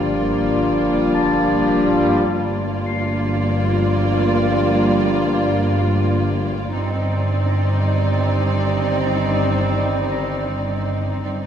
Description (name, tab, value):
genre	cinematic, suspense film score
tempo	53 BPM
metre	4/4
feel	straight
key	G minor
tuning	A4 = 440 Hz
part	warm chamber violin section	melody	0.0-11.5 s	D5	-27 LUFS	right 3 dB	none
part	warm studio violin section	second line	0.0-11.5 s	Eb4 to F4	-26 LUFS	left 1 dB	none
part	dark chamber viola section	accompaniment	0.0-11.5 s	Bb3 to C4	-26 LUFS	right 1 dB	none
part	warm French horn section	sustained chords	0.0-11.5 s	Bb3 to D5	-24 LUFS	left 2 dB	none
part	warm trombone section	sustained chords	0.0-11.5 s	Eb3 to G3	-25 LUFS	right 1 dB	none
part	dark chamber cello section	bass	0.0-11.5 s	G2	-24 LUFS	equal	none
part	warm studio double bass section	bass	0.0-11.5 s	G1	-24 LUFS	right 1 dB	none
part	sub drop	sound effects	0.0-2.2 s	none	-36 LUFS	equal	none
part	large celesta	texture	0.0-11.5 s	A5 to C7	-30 LUFS	left 5 dB	none
room	wet scoring stage reverb, RT60 1.6 s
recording	heard from further back in the room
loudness	-16 LUFS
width	side -8 dB against mid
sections	0.0-11.5 A section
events	impact 0.0-2.2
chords	0.0 Gm7; 6.7 Cmadd9/G